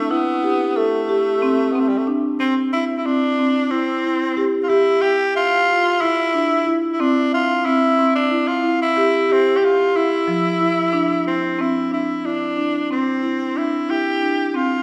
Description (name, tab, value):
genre	contemporary instrumental, contemporary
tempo	183 BPM (eighths)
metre	7/8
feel	straight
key	unclear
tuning	A4 = 443 Hz
part	raspy tenor saxophone	melody	0.0-14.8 s	G3 to G4	-23 LUFS	equal	none
part	marimba with medium mallets	arpeggios	0.0-14.8 s	F3 to E5	-21 LUFS	equal	none
room	wet recital hall reverb, RT60 1.8 s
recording	recorded in a church or concert hall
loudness	-19 LUFS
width	mono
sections	0.0-2.4 A section; 2.4-11.6 B section; 11.6-14.8 C section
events	none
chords	0.0 Am7; 2.4 C; 11.6 Am7 (rootless)